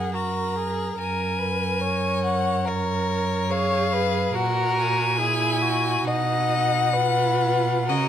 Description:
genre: classical, slow romantic movement for string quartet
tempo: 63-73 BPM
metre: 4/4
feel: rubato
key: F# major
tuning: A4 = 440 Hz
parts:
  - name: rich violin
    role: melody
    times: 0.0-8.1 s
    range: C#5 to A#5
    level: -25 LUFS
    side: left 6 dB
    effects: none
  - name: dark violin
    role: second line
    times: 0.0-8.1 s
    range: F#4 to D#5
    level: -26 LUFS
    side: left 1 dB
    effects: none
  - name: clear viola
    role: accompaniment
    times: 0.0-8.1 s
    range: D#4 to A#4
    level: -30 LUFS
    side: right 5 dB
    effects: none
  - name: rich cello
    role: bass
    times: 0.0-8.1 s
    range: F#2 to C#3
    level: -27 LUFS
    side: right 4 dB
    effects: none
room: moderate recital hall reverb, RT60 1.5 s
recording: close, detailed microphones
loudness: -21 LUFS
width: side -10 dB against mid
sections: 0.0-8.1 A section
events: none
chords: 0.0 F#; 4.4 F#7/A#; 6.1 B

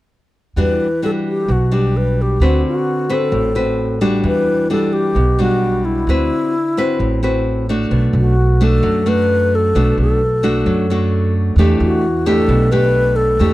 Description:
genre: bossa nova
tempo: 131 BPM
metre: 4/4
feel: straight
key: E minor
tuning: A4 = 440 Hz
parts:
  - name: alto flute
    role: melody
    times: 0.6-13.5 s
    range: E4 to B4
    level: -19 LUFS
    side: left 1 dB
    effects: tape echo
  - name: nylon-string guitar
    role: accompaniment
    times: 0.6-13.5 s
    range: A2 to B4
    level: -17 LUFS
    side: equal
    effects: none
  - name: upright bass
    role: bass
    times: 0.6-13.5 s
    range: A1 to F#2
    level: -17 LUFS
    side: right 1 dB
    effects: none
room: little or no reverb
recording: dry, close 1970s-style studio recording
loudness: -13 LUFS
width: side -16 dB against mid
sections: 0.6-7.9 A section; 7.9-13.5 B section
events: none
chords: 0.6 Em9; 2.4 D6; 4.2 Em9; 6.1 D13; 7.9 Bm7; 11.6 Em11

